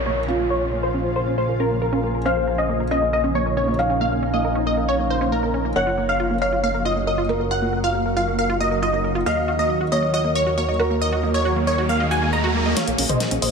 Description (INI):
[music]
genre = uplifting trance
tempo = 137 BPM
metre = 4/4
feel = straight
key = Bb minor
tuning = A4 = 440 Hz
[part]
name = supersaw stab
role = melody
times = 0.0-13.5 s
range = Bb4 to Bb5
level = -23 LUFS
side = equal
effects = cassette tape, low-pass filter, ping-pong delay
[part]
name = felt-muted upright piano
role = second line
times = 0.0-12.7 s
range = F4 to F5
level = -27 LUFS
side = equal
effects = ping-pong delay
[part]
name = shimmering ambient pad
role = sustained chords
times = 0.0-13.5 s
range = Db3 to Bb4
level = -26 LUFS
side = right 1 dB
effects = chorus, built-in reverb
[part]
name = fat analog bass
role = bass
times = 0.0-13.5 s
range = Gb1 to Eb2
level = -26 LUFS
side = equal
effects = none
[part]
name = downlifter and riser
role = sound effects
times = 0.0-2.3, 10.9-13.5 s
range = none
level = -30 LUFS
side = right 1 dB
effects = none
[part]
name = wide unison pluck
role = arpeggios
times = 0.1-13.5 s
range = Bb3 to Eb5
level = -27 LUFS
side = right 3 dB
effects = cassette tape, ping-pong delay
[part]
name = big-room dance drum kit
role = drums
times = 12.8-13.5 s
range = hi-hat, snare drum, toms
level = -27 LUFS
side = left 2 dB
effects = low-pass filter on hats, low-pass filter on snare, low-pass filter on cymbals, low-pass filter on toms
[sound]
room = light reverb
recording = none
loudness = -18 LUFS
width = side -5 dB against mid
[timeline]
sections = 0.0-12.8 A section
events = filter sweep on supersaw synth 0.0-12.8; filter sweep on synth pluck 0.0-12.8; riser 10.9-12.8, 12.8-13.5; drum fill 12.8-13.5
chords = 0.0 Bbmadd9; 5.8 Gbmaj7; 9.3 Ebm; 12.8 Bbmadd9